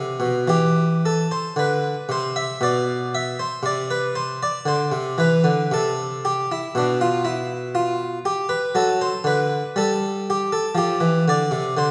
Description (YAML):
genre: classical, baroque-style suite movement for harpsichord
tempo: 58 BPM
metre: 3/4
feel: uneven beats, rubato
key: C major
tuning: A4 = 440 Hz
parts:
  - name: harpsichord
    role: solo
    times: 0.0-11.9 s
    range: B2 to E5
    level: -22 LUFS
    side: equal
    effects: none
room: wet scoring stage reverb, RT60 1.6 s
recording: recorded in a church or concert hall, nothing above 10.4 kHz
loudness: -22 LUFS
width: mono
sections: 0.5-11.9 A section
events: none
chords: 0.5 C/E; 2.6 N.C.; 3.6 C; 6.7 N.C.; 8.7 D/F#; 9.8 G5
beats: | 0.49 1.56 2.60 | 3.62 4.67 5.72 | 6.74 7.73 8.73 | 9.75 10.75 11.73